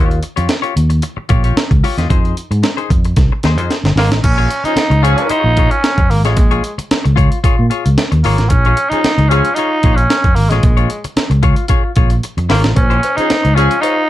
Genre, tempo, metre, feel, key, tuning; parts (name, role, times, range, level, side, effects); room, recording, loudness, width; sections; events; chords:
funk; 113 BPM; 4/4; straight; Bb dorian; A4 = 440 Hz
semi-hollow electric guitar; accompaniment; 0.0-14.0 s; Eb4 to Eb5; -21 LUFS; left 8 dB
fingered electric bass; bass; 0.0-13.7 s; G1 to Bb2; -14 LUFS; equal
breakbeat sampler-style drum kit; drums; 0.1-14.0 s; crash cymbal, hi-hat, kick drum, snare drum; -15 LUFS; equal
raspy tenor saxophone; melody; 4.0-14.1 s; Ab3 to Eb4; -16 LUFS; right 1 dB
warm horn section; second line; 4.7-5.3, 8.9-9.5, 13.2-13.7 s; F3 to Ab4; -19 LUFS; left 2 dB
cowbell; percussion; 12.8-14.0 s; -26 LUFS; left 3 dB
light reverb; dark, warm production; -11 LUFS; side -14 dB against mid
0.0-4.2 A section; 4.2-14.1 B section
drum fill 3.2-4.2, 12.2-12.8
0.0 Eb9; 2.1 Fm7; 4.2 Bbm7